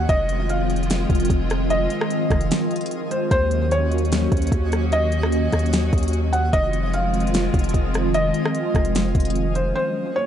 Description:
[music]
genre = hip hop, atmospheric cloud-rap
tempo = 149 BPM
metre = 4/4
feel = half-time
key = unclear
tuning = A4 = 440 Hz
[part]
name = felt-muted upright piano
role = melody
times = 0.0-10.3 s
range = C5 to Gb5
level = -25 LUFS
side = equal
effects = digital delay
[part]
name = hollow soft pad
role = sustained chords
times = 0.0-10.3 s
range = Eb3 to Gb4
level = -24 LUFS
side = equal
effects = ensemble chorus, sidechain pumping
[part]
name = long sustained 808-style bass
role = bass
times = 0.0-9.7 s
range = F1 to Eb2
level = -23 LUFS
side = equal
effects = none
[part]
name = twinkling granular texture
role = texture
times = 0.0-10.3 s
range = Ab3 to Eb5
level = -33 LUFS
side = left 1 dB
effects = built-in reverb
[part]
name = smooth R&B drum kit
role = drums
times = 0.1-9.6 s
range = hi-hat, kick drum, rim click, snare drum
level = -23 LUFS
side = equal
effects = none
[sound]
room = light reverb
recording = nothing above 11.0 kHz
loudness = -18 LUFS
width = side -10 dB against mid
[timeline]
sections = 0.0-9.8 A section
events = break 2.5-3.3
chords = 0.1 Fm7; 3.3 Ebm7; 6.5 Fm7; 9.8 Ebm7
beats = | 0.09 0.49 0.90 1.30 | 1.70 2.10 2.51 2.91 | 3.31 3.71 4.12 4.52 | 4.92 5.33 5.73 6.13 | 6.53 6.94 7.34 7.74 | 8.14 8.55 8.95 9.35 | 9.76 10.16

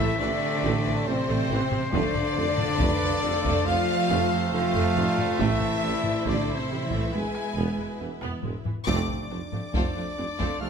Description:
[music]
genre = cinematic, epic orchestral film score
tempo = 69 BPM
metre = 4/4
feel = straight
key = unclear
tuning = A4 = 443 Hz
[part]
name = warm symphonic violin section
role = melody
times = 0.0-10.7 s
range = C5 to F6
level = -35 LUFS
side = left 2 dB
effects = none
[part]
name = silver concert flute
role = second line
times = 0.0-10.7 s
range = A4 to F5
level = -36 LUFS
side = left 3 dB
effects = none
[part]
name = warm symphonic violin section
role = second line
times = 0.0-10.7 s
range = C4 to F5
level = -36 LUFS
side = left 2 dB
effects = none
[part]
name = rich symphonic viola section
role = accompaniment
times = 0.0-10.7 s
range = C3 to A4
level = -34 LUFS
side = right 1 dB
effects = none
[part]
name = bright trombone section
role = sustained chords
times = 0.0-10.7 s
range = B2 to B3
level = -34 LUFS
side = right 5 dB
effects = none
[part]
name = mellow French horn section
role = sustained chords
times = 0.0-10.7 s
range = C4 to G#4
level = -31 LUFS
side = left 6 dB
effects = none
[part]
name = warm trumpet section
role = stabs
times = 0.0-10.7 s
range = C5 to G#5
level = -32 LUFS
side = right 2 dB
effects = none
[part]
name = dark symphonic double bass section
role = bass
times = 0.0-10.7 s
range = E1 to A1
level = -32 LUFS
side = right 3 dB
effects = none
[part]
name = rich symphonic cello section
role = bass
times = 0.0-10.7 s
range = F2 to G#3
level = -32 LUFS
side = right 2 dB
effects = none
[part]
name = mellow tuba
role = bass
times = 0.2-10.7 s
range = E1 to A1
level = -34 LUFS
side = right 5 dB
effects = none
[part]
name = taiko ensemble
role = drums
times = 1.5-10.7 s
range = none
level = -31 LUFS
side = equal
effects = none
[sound]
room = moderate scoring stage reverb, RT60 2.0 s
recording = close, detailed microphones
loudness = -23 LUFS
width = side -6 dB against mid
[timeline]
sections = 0.0-8.9 A section; 8.9-10.7 A section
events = band accent 8.9-9.7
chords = 0.0 Am; 1.9 F6; 5.4 Am; 7.1 E; 8.9 F6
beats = 0.20 1.06 | 1.93 2.80 3.66 4.53 | 5.40 6.27 7.13 8.00 | 8.87 9.74 10.61

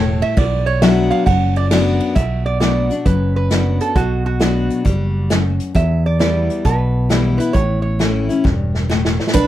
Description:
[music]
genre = honky-tonk and classic country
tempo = 134 BPM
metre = 4/4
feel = swing 66% on 8ths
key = B minor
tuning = A4 = 439 Hz
[part]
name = lap resonator guitar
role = second line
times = 0.0-9.1 s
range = F#4 to F#5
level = -22 LUFS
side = right 6 dB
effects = none
[part]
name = picked steel-string acoustic guitar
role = accompaniment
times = 0.0-9.5 s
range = E2 to F#4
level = -19 LUFS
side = left 4 dB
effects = none
[part]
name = fingered electric bass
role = bass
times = 0.0-9.5 s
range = E1 to E2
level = -18 LUFS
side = right 1 dB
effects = none
[part]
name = unplugged drum kit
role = drums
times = 0.2-9.5 s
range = hi-hat, kick drum, ride cymbal, snare drum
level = -19 LUFS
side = equal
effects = none
[part]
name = picked steel-string acoustic guitar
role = melody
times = 9.3-9.5 s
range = D4 to B4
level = -13 LUFS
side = right 2 dB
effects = none
[sound]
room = little or no reverb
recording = none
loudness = -14 LUFS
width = side -13 dB against mid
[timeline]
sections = 0.0-2.2 A section; 2.2-9.3 B section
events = resonator guitar played with a steel bar solo 0.0-2.2, 2.2-9.3; drum fill 8.4-9.3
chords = 0.4 Bm; 5.8 Em; 7.5 A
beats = | 0.37 0.82 1.27 1.72 | 2.16 2.61 3.06 3.51 | 3.96 4.41 4.85 5.30 | 5.75 6.20 6.65 7.10 | 7.55 8.00 8.45 8.90 | 9.35

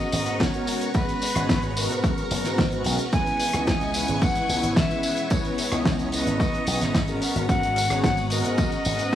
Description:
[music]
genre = nu-disco, nu disco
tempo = 110 BPM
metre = 4/4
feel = straight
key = G# minor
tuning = A4 = 438 Hz
[part]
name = breathy bright jazz flute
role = melody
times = 0.0-9.2 s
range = A#4 to G#5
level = -29 LUFS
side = left 1 dB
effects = analog delay
[part]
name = mellow synth brass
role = accompaniment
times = 0.0-9.2 s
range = G#3 to D#5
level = -29 LUFS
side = equal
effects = chorus
[part]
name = string machine, full ensemble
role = sustained chords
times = 0.0-9.2 s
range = B3 to C#6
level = -31 LUFS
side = equal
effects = phaser, ensemble chorus, sidechain pumping
[part]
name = damped 70s drum kit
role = drums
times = 0.0-9.1 s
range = hi-hat, rim click, snare drum, tambourine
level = -28 LUFS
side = equal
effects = none
[part]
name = slap bass with an envelope filter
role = bass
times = 0.1-9.1 s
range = F#1 to G#2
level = -28 LUFS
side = equal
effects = sidechain pumping
[part]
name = electronic kick drum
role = drums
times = 0.4-9.2 s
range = none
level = -26 LUFS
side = equal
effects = overdrive
[sound]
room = small room ambience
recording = dry, gritty hardware recording, studio ambience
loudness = -21 LUFS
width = side -11 dB against mid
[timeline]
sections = 0.0-9.2 A section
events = none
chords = 0.0 G#m11; 3.1 C#m7; 7.2 G#m11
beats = 0.40 | 0.94 1.49 2.04 2.58 | 3.13 3.67 4.22 4.76 | 5.31 5.85 6.40 6.95 | 7.49 8.04 8.58 9.13

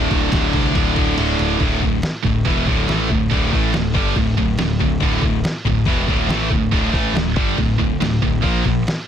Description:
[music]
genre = heavy metal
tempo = 141 BPM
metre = 4/4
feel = straight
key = unclear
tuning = A4 = 440 Hz
[part]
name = cranked stack guitar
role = riff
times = 0.0-1.6 s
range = D2 to D3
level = -25 LUFS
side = left 1 dB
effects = overdrive
[part]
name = high-gain distorted guitar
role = riff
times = 0.0-8.8 s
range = D2 to Bb3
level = -22 LUFS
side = left 10 dB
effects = distortion
[part]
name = scooped high-gain guitar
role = riff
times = 0.0-8.8 s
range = D2 to Bb3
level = -21 LUFS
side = right 11 dB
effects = distortion
[part]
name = fuzz picked electric bass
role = bass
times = 0.0-8.9 s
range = D1 to C2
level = -23 LUFS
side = equal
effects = overdrive
[part]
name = lo-fi sampler-style drum kit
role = drums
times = 0.1-9.0 s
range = crash cymbal, kick drum, ride cymbal, snare drum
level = -21 LUFS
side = equal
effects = none
[sound]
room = little or no reverb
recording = dense, heavily limited modern master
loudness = -16 LUFS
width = side -9 dB against mid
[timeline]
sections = 0.0-1.6 A section; 1.6-9.1 B section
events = kick and snare drop out 1.2-1.6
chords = 0.0 D5; 8.4 Bb5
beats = 0.33 0.76 1.18 | 1.61 2.03 2.46 2.89 | 3.31 3.74 4.17 4.59 | 5.02 5.45 5.87 6.30 | 6.73 7.15 7.58 8.01 | 8.44 8.86

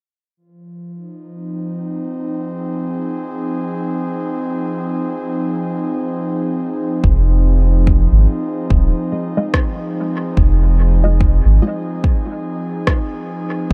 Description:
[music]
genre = ambient dub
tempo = 72 BPM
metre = 4/4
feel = swing 60% on 16ths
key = F minor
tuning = A4 = 436 Hz
[part]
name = airy breathy pad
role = sustained chords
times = 0.4-13.7 s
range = F3 to Ab4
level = -24 LUFS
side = equal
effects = chorus
[part]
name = soft dub sub bass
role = bass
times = 7.0-13.7 s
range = Eb1 to Ab1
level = -14 LUFS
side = equal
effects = none
[part]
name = electronic kick drum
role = drums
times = 7.0-13.7 s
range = none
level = -18 LUFS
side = equal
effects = none
[part]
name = filtered dub chord stab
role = stabs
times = 9.1-11.8 s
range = Ab3 to Eb5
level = -27 LUFS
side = equal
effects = phaser, subtle chorus, dub echo
[part]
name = electronic rim click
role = drums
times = 9.5-13.1 s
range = none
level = -25 LUFS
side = equal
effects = overdrive, dub echo
[sound]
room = digital ambience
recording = none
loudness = -18 LUFS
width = mono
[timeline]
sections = 0.4-7.0 A section; 7.0-13.7 B section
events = none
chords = 0.4 Fm7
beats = | 0.37 1.20 2.04 2.87 | 3.70 4.54 5.37 6.20 | 7.04 7.87 8.70 9.54 | 10.37 11.20 12.04 12.87 | 13.70

